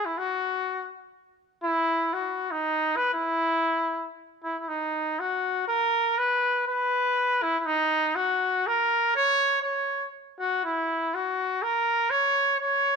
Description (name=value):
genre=mexican folk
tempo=121 BPM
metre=3/4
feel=rubato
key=unclear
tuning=A4 = 439 Hz
part: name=warm trumpet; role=solo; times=0.0-13.0 s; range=D#4 to C#5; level=-23 LUFS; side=equal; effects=none
room=light reverb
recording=close, detailed microphones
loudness=-23 LUFS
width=side -5 dB against mid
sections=0.0-4.7 A section; 4.7-13.0 B section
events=none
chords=none